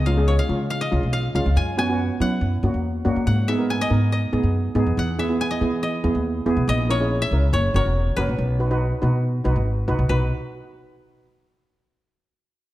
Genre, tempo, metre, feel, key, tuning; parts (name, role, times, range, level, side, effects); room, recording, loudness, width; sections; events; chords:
calypso; 141 BPM; 4/4; straight; B major; A4 = 443 Hz
koto; melody; 0.0-10.3 s; B4 to G#5; -27 LUFS; left 2 dB
upright bass; bass; 0.0-10.3 s; E1 to F#3; -21 LUFS; equal
steel pan; accompaniment; 0.1-10.3 s; G#3 to B4; -24 LUFS; right 2 dB
light reverb; dark, warm production; -19 LUFS; side -15 dB against mid
0.0-10.1 A section; 10.1-11.8 B section
0.0 C#7; 1.6 F#7sus4; 2.4 F#7; 3.3 G#m7; 5.0 Emaj7; 6.7 A#m7b5; 7.5 F#7; 8.4 B